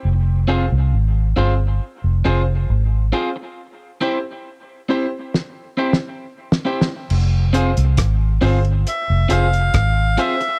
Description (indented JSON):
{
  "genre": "dub reggae",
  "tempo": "68 BPM",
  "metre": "4/4",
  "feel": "straight",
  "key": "F harmonic minor",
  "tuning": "A4 = 445 Hz",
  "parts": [
    { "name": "vintage muted fingered electric bass", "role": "bass", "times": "0.0-10.2 s", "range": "F1 to C2", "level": "-18 LUFS", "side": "equal", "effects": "none" },
    { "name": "electric guitar at the edge of break-up", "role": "accompaniment", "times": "0.5-10.4 s", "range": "C4 to C5", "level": "-27 LUFS", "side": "equal", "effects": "vibrato effect, dub echo" },
    { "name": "clear grand piano", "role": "stabs", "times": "0.5-10.4 s", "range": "C4 to C5", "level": "-29 LUFS", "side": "equal", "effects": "dub echo" },
    { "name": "cloth-damped thuddy drum kit", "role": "drums", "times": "5.3-10.6 s", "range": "crash cymbal, hi-hat, kick drum, rim click, snare drum", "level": "-23 LUFS", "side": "equal", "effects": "none" },
    { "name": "melodica", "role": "melody", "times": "8.9-10.6 s", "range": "E5 to F5", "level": "-22 LUFS", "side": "equal", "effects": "dub echo" }
  ],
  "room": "small room ambience",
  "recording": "dry, close 1970s-style studio recording",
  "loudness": "-19 LUFS",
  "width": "mono",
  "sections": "0.0-7.1 A section; 7.1-10.6 B section",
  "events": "break 0.0-7.1; drum fill 5.3-7.1",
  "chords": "0.0 Fm; 3.6 C; 7.1 Fm"
}